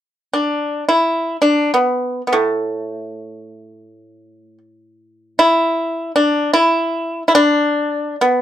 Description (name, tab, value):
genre	chinese traditional, Chinese solo plucked strings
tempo	free time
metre	none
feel	none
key	unclear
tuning	A4 = 441 Hz
part	pipa	solo	0.3-8.4 s	A2 to E4	-14 LUFS	equal	none
room	moderate studio reverb, RT60 0.5 s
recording	dark, warm production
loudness	-15 LUFS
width	side -11 dB against mid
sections	0.0-8.4 A section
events	none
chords	none